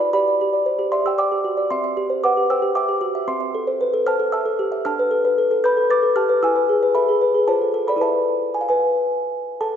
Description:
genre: classical, lullaby for music box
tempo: 114 BPM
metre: 3/4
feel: straight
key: unclear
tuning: A4 = 441 Hz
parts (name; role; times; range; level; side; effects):
- music box; solo; 0.0-9.8 s; C4 to A6; -17 LUFS; equal; none
room: wet concert hall reverb, RT60 2.1 s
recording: recorded in a church or concert hall, nothing above 7.6 kHz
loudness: -17 LUFS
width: side -8 dB against mid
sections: 0.0-9.6 A section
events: none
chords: 0.1 G; 1.7 C; 3.3 Am/C; 4.9 Bm7b5/D; 6.4 E; 7.5 F; 8.0 E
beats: | 0.14 0.66 1.19 | 1.71 2.23 2.76 | 3.28 3.80 4.33 | 4.85 5.38 5.90 | 6.42 6.95 7.48 | 8.01 8.54 9.07 | 9.60

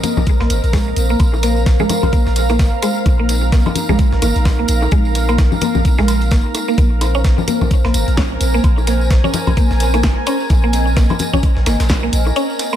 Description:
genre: minimal techno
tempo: 129 BPM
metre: 4/4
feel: swing 58% on 16ths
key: unclear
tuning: A4 = 440 Hz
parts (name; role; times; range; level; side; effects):
- mallet-like synth pluck; riff; 0.0-12.8 s; Ab3 to Db4; -21 LUFS; equal; wide subtle chorus, cassette tape, sidechain pumping, ping-pong delay
- breakbeat sampler-style drum kit; drums; 0.0-12.7 s; hi-hat, snare drum; -31 LUFS; equal; high-pass filter on snare, sidechain pumping on hats, high-pass filter on hats
- punchy analog drum machine; drums; 0.0-12.7 s; hi-hat, snare drum; -24 LUFS; equal; overdrive
- congas, bongos and cowbell; percussion; 0.0-12.8 s; none; -23 LUFS; left 5 dB; ping-pong delay
- tambourine; percussion; 0.0-12.8 s; none; -29 LUFS; right 2 dB; none
- granular cloud pad; texture; 0.0-12.8 s; Bb4 to Ab5; -23 LUFS; right 1 dB; built-in reverb, sidechain pumping
- pulsing gated texture; texture; 0.0-12.8 s; C4 to Eb5; -27 LUFS; right 1 dB; chorus, built-in reverb, sidechain pumping
- punchy sub bass; bass; 0.2-12.3 s; Ab1 to Bb1; -17 LUFS; equal; sidechain pumping
- electronic kick drum; drums; 0.3-12.0 s; none; -14 LUFS; equal; none
room: little or no reverb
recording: none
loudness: -12 LUFS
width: side -11 dB against mid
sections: 0.0-12.8 A section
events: break 12.4-12.8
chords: 0.0 Bb5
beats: 0.27 0.73 | 1.20 1.66 2.13 2.59 | 3.06 3.52 3.99 4.45 | 4.92 5.38 5.85 6.32 | 6.78 7.25 7.71 8.18 | 8.64 9.11 9.57 10.04 | 10.50 10.97 11.43 11.90 | 12.36

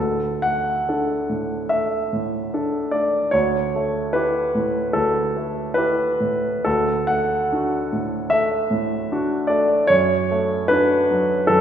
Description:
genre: classical, romantic character piece for solo piano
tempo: 74 BPM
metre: 4/4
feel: rubato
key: D major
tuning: A4 = 440 Hz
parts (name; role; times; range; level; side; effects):
- warm grand piano; solo; 0.0-11.6 s; D2 to F#5; -18 LUFS; equal; none
room: wet scoring stage reverb, RT60 2.0 s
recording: recorded in a church or concert hall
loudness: -18 LUFS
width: side -9 dB against mid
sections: 0.0-11.6 A section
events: none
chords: 0.0 D; 3.3 A7/D; 6.7 D; 9.9 D/F#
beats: 0.89 1.71 2.52 | 3.33 4.15 4.96 5.79 | 6.66 7.51 8.31 9.11 | 9.90 10.71 11.51

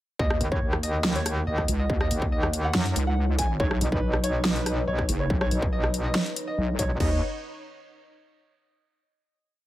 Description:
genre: heavy wobble dubstep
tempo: 141 BPM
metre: 4/4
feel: half-time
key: Eb minor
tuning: A4 = 437 Hz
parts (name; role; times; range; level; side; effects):
- warm grand piano; melody; 0.2-7.2 s; B4 to Ab5; -32 LUFS; equal; digital delay
- supersaw pad; sustained chords; 0.2-7.2 s; Eb4 to Gb5; -35 LUFS; equal; sidechain pumping, low-pass filter
- wobble bass; bass; 0.2-7.2 s; F#1 to Eb2; -26 LUFS; equal; chorus, overdrive
- dubstep drum kit; drums; 0.2-7.1 s; crash cymbal, kick drum; -28 LUFS; equal; distortion
- dubstep drum kit; drums; 0.3-6.9 s; hi-hat, rim click, snare drum; -28 LUFS; equal; none
- metallic wobble bass; bass; 0.4-7.0 s; B1 to Gb2; -27 LUFS; equal; chorus, overdrive
room: little or no reverb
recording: none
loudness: -23 LUFS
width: side -15 dB against mid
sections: 0.2-7.0 drop; 7.0-8.7 final chord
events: drop 0.2-7.0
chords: 0.2 Ebm7; 3.6 Badd9; 7.0 Ebm7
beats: | 0.19 0.62 1.04 1.47 | 1.90 2.32 2.75 3.17 | 3.60 4.02 4.45 4.88 | 5.30 5.73 6.15 6.58 | 7.00

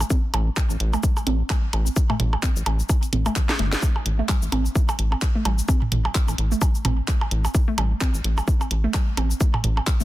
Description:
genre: minimal techno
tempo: 129 BPM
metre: 4/4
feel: swing 57% on 16ths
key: A minor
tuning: A4 = 440 Hz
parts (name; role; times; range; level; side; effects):
- rubbery square bass; bass; 0.0-10.0 s; G1 to A1; -22 LUFS; equal; sidechain pumping
- house drum kit; drums; 0.0-10.0 s; cabasa, handclaps, hi-hat, snare drum; -29 LUFS; left 1 dB; none
- electronic percussion blips and toms; percussion; 0.0-9.9 s; none; -28 LUFS; right 2 dB; overdrive, tape echo
- hollow square pluck; riff; 0.1-10.0 s; E3 to C4; -30 LUFS; right 2 dB; chorus, cassette tape, sidechain pumping, tape echo
- electronic kick drum; drums; 0.1-10.0 s; none; -21 LUFS; equal; none
room: little or no reverb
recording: dense, heavily limited modern master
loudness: -20 LUFS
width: side -16 dB against mid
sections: 0.0-10.0 A section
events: filter sweep on synth arpeggio sound 0.0-10.0; drum fill 3.5-3.8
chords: none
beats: | 0.10 0.57 1.03 1.50 | 1.97 2.43 2.90 3.36 | 3.83 4.29 4.75 5.22 | 5.69 6.15 6.62 7.08 | 7.55 8.01 8.48 8.94 | 9.41 9.87

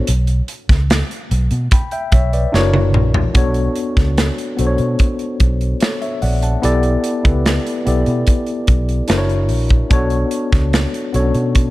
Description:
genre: lush 1970s-style soul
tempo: 73 BPM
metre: 4/4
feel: straight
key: B minor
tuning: A4 = 440 Hz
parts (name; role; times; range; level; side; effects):
- mellow tine electric piano; accompaniment; 0.0-11.7 s; B3 to B5; -19 LUFS; left 2 dB; overdrive, fast stereo tremolo
- vintage muted fingered electric bass; bass; 0.1-11.7 s; F#1 to B2; -17 LUFS; equal; none
- modern studio drum kit; drums; 0.1-11.7 s; hi-hat, kick drum, snare drum, toms; -16 LUFS; equal; none
room: small room ambience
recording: none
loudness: -14 LUFS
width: side -17 dB against mid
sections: 0.0-3.4 A section; 3.4-11.7 B section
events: drum fill 2.5-3.4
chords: 0.1 Bsus2; 2.5 F#7b13; 3.4 Bm9; 6.6 G6/B; 9.1 F#7b13; 9.9 Bm9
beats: | 0.08 0.90 1.72 2.54 | 3.35 4.17 5.00 5.82 | 6.63 7.45 8.27 9.09 | 9.91 10.73 11.55

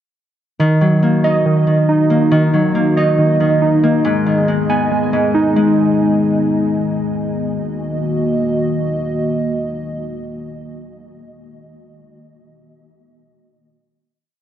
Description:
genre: hip hop, trap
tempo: 139 BPM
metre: 4/4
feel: half-time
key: Eb minor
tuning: A4 = 440 Hz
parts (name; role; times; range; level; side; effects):
- Celtic harp; accompaniment; 0.6-7.8 s; Ab2 to Eb4; -18 LUFS; left 4 dB; low-pass filter
- dark analog pad; sustained chords; 0.6-11.7 s; Eb3 to Eb5; -21 LUFS; equal; chorus
- warbly lo-fi synth keys; arpeggios; 0.6-6.9 s; Eb3 to Ab5; -16 LUFS; right 3 dB; chorus, low-pass filter, digital delay
room: wet huge ambient reverb, RT60 7.9 s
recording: worn, warbling old tape, cassette tape, warbly pitch drift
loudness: -13 LUFS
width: side -10 dB against mid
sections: 0.6-7.5 breakdown; 7.5-11.0 final chord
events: none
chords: 0.6 Ebm; 4.0 Abm; 7.5 Ebm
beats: | 0.59 1.02 1.46 1.89 | 2.32 2.75 3.18 3.62 | 4.05 4.48 4.91 5.34 | 5.77 6.21 6.64 7.07 | 7.50 7.93 8.36 8.79 | 9.23 9.66 10.09 10.52

